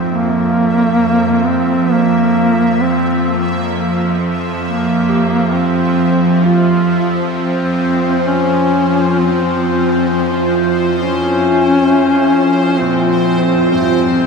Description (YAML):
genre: ambient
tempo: 66 BPM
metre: 4/4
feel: straight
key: F harmonic minor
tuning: A4 = 440 Hz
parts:
  - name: warm concert grand piano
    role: arpeggios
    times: 0.0-14.3 s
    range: Ab2 to G4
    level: -31 LUFS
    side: left 1 dB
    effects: none
  - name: bowed-like drone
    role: drone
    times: 0.0-14.3 s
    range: F2 to F3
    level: -16 LUFS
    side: right 2 dB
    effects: built-in reverb
  - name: bubbling stepped-filter texture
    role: texture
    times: 0.0-14.3 s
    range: C5 to E5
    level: -25 LUFS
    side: left 3 dB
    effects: chorus, built-in reverb
  - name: warm duduk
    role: melody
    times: 0.1-14.3 s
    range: Bb3 to F4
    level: -15 LUFS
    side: left 1 dB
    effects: diffuse ambient delay
  - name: deep dark ambient pad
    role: sustained chords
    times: 8.1-14.3 s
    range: F4 to Ab5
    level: -17 LUFS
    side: equal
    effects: chorus, built-in reverb
room: wet lush hall reverb, RT60 2.9 s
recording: dreamy mix soaked in reverb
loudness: -12 LUFS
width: side -4 dB against mid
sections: 0.0-14.3 A section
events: fade-in on synth texture 0.0-14.3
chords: 0.0 Fm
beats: | 0.08 0.98 1.89 2.80 | 3.71 4.62 5.53 6.44 | 7.35 8.26 9.17 10.08 | 10.98 11.89 12.80 13.71